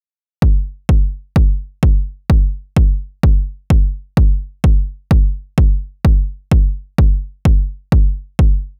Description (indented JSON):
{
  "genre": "techno",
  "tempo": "128 BPM",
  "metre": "4/4",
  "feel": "swing 55% on 16ths",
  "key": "none",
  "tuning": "none",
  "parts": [
    { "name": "electronic kick drum", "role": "drums", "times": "0.4-8.5 s", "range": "none", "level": "-14 LUFS", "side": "equal", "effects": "none" }
  ],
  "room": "little or no reverb",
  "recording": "none",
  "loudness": "-16 LUFS",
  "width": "mono",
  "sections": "0.4-8.8 A section",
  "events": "none",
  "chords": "none"
}